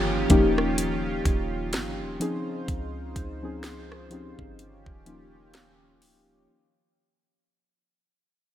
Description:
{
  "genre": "contemporary R&B",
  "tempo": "63 BPM",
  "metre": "4/4",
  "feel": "swing 58% on 16ths",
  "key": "unclear",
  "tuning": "A4 = 442 Hz",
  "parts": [
    { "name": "muted felt-like synth keys", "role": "accompaniment", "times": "0.0-6.5 s", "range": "F3 to Ab4", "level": "-27 LUFS", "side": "left 2 dB", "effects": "chorus" },
    { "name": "chorused pulse-width pad", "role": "sustained chords", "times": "0.0-6.5 s", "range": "Db3 to C5", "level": "-33 LUFS", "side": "right 2 dB", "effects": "none" },
    { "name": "clean 808-style bass", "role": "bass", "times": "0.0-6.5 s", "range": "Db1 to Db2", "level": "-33 LUFS", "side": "right 1 dB", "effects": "none" },
    { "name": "trap drum kit", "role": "drums", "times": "0.3-6.3 s", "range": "hi-hat, kick drum, rim click, snare drum", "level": "-28 LUFS", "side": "right 1 dB", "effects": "none" }
  ],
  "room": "light reverb",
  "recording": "bright 1980s-style digital production",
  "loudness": "-24 LUFS",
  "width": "side -11 dB against mid",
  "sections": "0.0-6.5 A section",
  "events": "fade-out 0.0-6.5",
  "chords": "0.0 Eb9; 2.2 Dbmaj9; 4.6 Eb9"
}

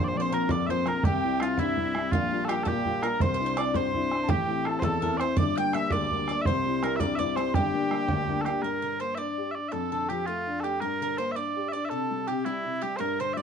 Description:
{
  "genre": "celtic folk, Celtic jig",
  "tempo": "110 BPM (dotted quarters)",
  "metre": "6/8",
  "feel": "straight",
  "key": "G dorian",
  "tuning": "A4 = 441 Hz",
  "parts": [
    { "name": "mellow small bagpipes", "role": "melody", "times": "0.0-13.4 s", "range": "E4 to G5", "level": "-30 LUFS", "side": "right 2 dB", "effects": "plate reverb" },
    { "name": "bowl-back mandolin", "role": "second line", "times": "0.0-13.4 s", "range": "E4 to G5", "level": "-35 LUFS", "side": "right 3 dB", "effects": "none" },
    { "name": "wooden whistle", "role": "second line", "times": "0.0-8.5 s", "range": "E5 to G6", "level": "-37 LUFS", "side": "left 3 dB", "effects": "none" },
    { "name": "warm upright piano", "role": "accompaniment", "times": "0.0-13.4 s", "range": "G1 to G4", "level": "-29 LUFS", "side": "left 4 dB", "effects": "none" },
    { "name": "bodhran", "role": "percussion", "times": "0.5-8.5 s", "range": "none", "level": "-29 LUFS", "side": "right 3 dB", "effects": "none" }
  ],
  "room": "moderate studio reverb, RT60 0.6 s",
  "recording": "dark, warm production",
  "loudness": "-25 LUFS",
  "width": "side -7 dB against mid",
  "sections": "0.0-8.6 A section; 8.6-13.4 B section",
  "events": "none",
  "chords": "0.0 Bbsus2; 1.0 C; 2.1 Gm7/Bb; 3.2 Cadd9; 4.3 Am; 5.4 Gm; 6.5 C; 7.5 Gm; 9.7 Dm/F; 10.8 Gm; 11.9 C"
}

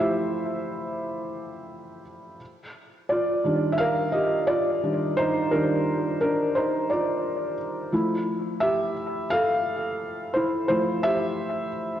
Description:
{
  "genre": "hip hop",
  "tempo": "87 BPM",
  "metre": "4/4",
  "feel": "swing 60% on 16ths",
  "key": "F major",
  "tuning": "A4 = 440 Hz",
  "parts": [
    { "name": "felt-muted upright piano", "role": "solo", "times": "0.0-12.0 s", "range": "Eb3 to F5", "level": "-23 LUFS", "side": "equal", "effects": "low-pass filter, analog delay" }
  ],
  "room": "wet lush hall reverb, RT60 2.1 s",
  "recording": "dreamy mix soaked in reverb, cassette tape",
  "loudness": "-23 LUFS",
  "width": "side -11 dB against mid",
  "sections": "0.0-12.0 A section",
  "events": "felt piano solo 0.0-12.0",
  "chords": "0.0 Fmaj9; 2.4 Ebmaj9; 7.9 Fmaj9"
}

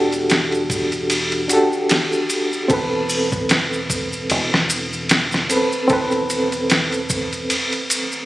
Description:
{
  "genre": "trip hop",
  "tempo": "75 BPM",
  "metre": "4/4",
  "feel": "swing 56% on 16ths",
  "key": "unclear",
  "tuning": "A4 = 440 Hz",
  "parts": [
    { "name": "reed electric piano", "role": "accompaniment", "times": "0.0-8.3 s", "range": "C4 to B4", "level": "-20 LUFS", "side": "equal", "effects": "overdrive, fast tremolo, vintage 12-bit sampler grit, tape echo" },
    { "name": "deep dub fingered electric bass", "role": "bass", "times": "0.0-7.5 s", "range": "E1", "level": "-30 LUFS", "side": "equal", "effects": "none" },
    { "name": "dusty soul sampler-style drum kit", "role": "drums", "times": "0.1-8.1 s", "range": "hi-hat, kick drum, ride cymbal, snare drum", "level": "-20 LUFS", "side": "equal", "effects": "studio reverb" },
    { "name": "maracas", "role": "percussion", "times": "0.1-8.3 s", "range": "none", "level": "-26 LUFS", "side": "equal", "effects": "none" }
  ],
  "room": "light reverb",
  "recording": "recorded on a phone in the room, studio reverb",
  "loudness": "-17 LUFS",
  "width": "side -17 dB against mid",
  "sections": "0.0-8.3 A section",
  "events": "none",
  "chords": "0.0 Em11; 2.7 Amadd9/E"
}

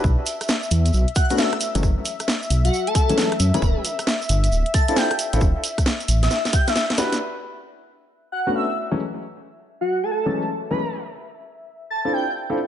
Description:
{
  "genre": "UK garage, two-step garage",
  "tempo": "134 BPM",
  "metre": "4/4",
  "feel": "swing 64% on 16ths",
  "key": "unclear",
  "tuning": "A4 = 440 Hz",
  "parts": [
    { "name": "warm analog pad", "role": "sustained chords", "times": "0.0-12.7 s", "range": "E5", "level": "-32 LUFS", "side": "left 2 dB", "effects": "chorus, sidechain pumping" },
    { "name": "dark concert grand piano", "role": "stabs", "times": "0.0-12.6 s", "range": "E3 to B4", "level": "-25 LUFS", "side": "left 2 dB", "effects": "low-pass filter, tape echo" },
    { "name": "dark detuned saw bass", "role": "bass", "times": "0.0-6.3 s", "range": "D1 to F#2", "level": "-19 LUFS", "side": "equal", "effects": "none" },
    { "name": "electronic kick drum", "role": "drums", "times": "0.0-6.6 s", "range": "none", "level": "-20 LUFS", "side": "equal", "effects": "none" },
    { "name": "tube shaker", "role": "percussion", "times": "0.0-7.2 s", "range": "none", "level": "-31 LUFS", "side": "right 4 dB", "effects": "none" },
    { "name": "garage drum kit", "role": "drums", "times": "0.3-7.2 s", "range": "hi-hat, rim click, snare drum", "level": "-24 LUFS", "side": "equal", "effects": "low-pass filter on hats, low-pass filter on snare" },
    { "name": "airy dreamy lead", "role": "melody", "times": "1.2-12.3 s", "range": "F#4 to A5", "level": "-25 LUFS", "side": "equal", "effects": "chorus, tape echo" }
  ],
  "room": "light reverb, digital ambience",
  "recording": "echo-heavy mix, nothing above 11.0 kHz",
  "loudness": "-19 LUFS",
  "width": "side -10 dB against mid",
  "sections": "0.0-7.2 A section; 7.2-12.7 B section",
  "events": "filter sweep on grand piano 0.0-7.2; drum fill 6.3-7.2; filter sweep on analog synth pad 7.2-12.7",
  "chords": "0.0 B5; 1.6 F#m9; 3.6 Dm9; 5.4 N.C.; 8.8 F#m9; 10.8 Dm9"
}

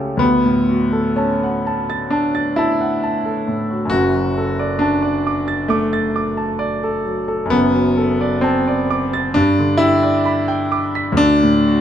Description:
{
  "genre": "classical, romantic nocturne for solo piano",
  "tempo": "66 BPM",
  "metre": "4/4",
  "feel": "uneven beats, rubato",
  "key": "D major, G major from 7.5 s",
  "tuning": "A4 = 440 Hz",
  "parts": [
    { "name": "warm concert grand piano", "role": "solo", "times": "0.0-11.8 s", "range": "F#1 to B6", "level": "-15 LUFS", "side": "equal", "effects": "none" }
  ],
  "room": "light reverb",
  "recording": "close, detailed microphones",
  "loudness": "-15 LUFS",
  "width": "side -10 dB against mid",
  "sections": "0.0-11.8 A section",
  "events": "none",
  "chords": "0.2 D; 3.9 D/F#; 9.4 G; 11.2 D"
}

